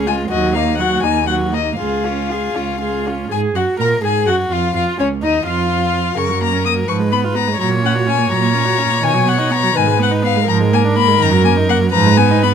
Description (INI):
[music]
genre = quick classical-period movement for string quartet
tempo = 83 BPM (dotted quarters)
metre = 6/8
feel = rubato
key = F# major, Eb minor from 9.0 s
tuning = A4 = 442 Hz
[part]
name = rich violin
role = second line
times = 0.0-12.5 s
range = C#4 to C#5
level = -20 LUFS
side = left 3 dB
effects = none
[part]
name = rich viola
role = accompaniment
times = 0.0-12.5 s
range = C#3 to A#4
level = -20 LUFS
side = right 4 dB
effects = none
[part]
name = warm cello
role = bass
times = 0.0-12.5 s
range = C#2 to B2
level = -18 LUFS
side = right 5 dB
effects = none
[part]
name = rich violin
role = melody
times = 0.1-12.5 s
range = C#5 to D#6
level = -19 LUFS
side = left 12 dB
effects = none
[sound]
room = light reverb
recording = close, detailed microphones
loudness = -13 LUFS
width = side -7 dB against mid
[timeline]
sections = 0.0-3.3 A section; 3.3-12.5 B section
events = none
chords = 0.3 D#m; 1.8 C#; 3.3 F#; 4.0 Fm; 4.8 C#; 6.2 F#; 6.9 Fdim/Ab; 7.6 F#/A#; 9.0 B; 9.8 Abm; 10.5 Bb7/Ab; 11.2 Ebm/Gb; 11.9 Fm7b5/Ab